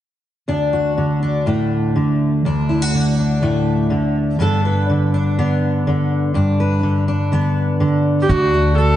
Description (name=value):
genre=folk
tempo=123 BPM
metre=4/4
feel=straight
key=D major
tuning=A4 = 439 Hz
part: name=fingerpicked steel-string acoustic guitar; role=accompaniment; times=0.5-9.0 s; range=D2 to B4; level=-15 LUFS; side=equal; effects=lush chorus
part: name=warm viola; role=melody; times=8.2-9.0 s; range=F#4 to A4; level=-16 LUFS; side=right 2 dB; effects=tape echo
part: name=upright bass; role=bass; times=8.3-9.0 s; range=D2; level=-17 LUFS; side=equal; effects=none
room=moderate lush hall reverb, RT60 2.2 s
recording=dreamy mix soaked in reverb, nothing above 10.9 kHz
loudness=-15 LUFS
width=side -12 dB against mid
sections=0.5-8.3 A section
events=none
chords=0.5 D; 4.4 G; 8.3 D